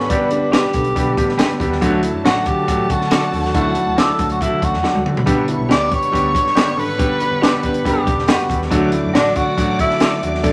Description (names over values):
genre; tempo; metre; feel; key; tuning
uptempo 1960s-style soul; 139 BPM; 4/4; straight; D major; A4 = 440 Hz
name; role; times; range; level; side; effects
breathy tenor saxophone; melody; 0.0-10.5 s; C#4 to D5; -22 LUFS; equal; none
vibraphone with soft mallets; second line; 0.0-10.5 s; C#5 to D6; -30 LUFS; equal; none
warm studio violin section; second line; 0.0-10.5 s; A3 to D6; -34 LUFS; equal; none
warm grand piano; accompaniment; 0.0-10.5 s; D3 to A4; -22 LUFS; equal; none
vintage muted fingered electric bass; bass; 0.0-10.5 s; E1 to D3; -29 LUFS; equal; none
compact cocktail drum kit; drums; 0.0-10.5 s; hi-hat, kick drum, snare drum, toms; -22 LUFS; equal; none
electric guitar through a small old amp; stabs; 0.5-10.1 s; F#4 to D5; -27 LUFS; equal; phaser
room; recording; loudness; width
wet large studio reverb, RT60 0.9 s; vinyl crackle; -17 LUFS; mono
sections
0.0-10.5 A section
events
drum fill 4.8-5.3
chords
0.0 G; 1.8 D; 5.3 G; 8.7 D